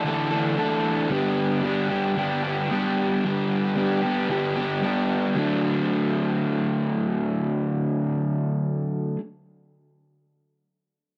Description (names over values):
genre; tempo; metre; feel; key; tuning
rock; 113 BPM; 4/4; straight; D major; A4 = 440 Hz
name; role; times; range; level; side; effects
raw garage guitar; solo; 0.0-9.2 s; G2 to A4; -24 LUFS; equal; overdrive
room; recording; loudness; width
little or no reverb; dry, close 1970s-style studio recording; -24 LUFS; mono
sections
0.0-5.4 A section; 5.4-9.6 B section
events
none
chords
0.0 Dsus2; 1.1 G; 5.4 D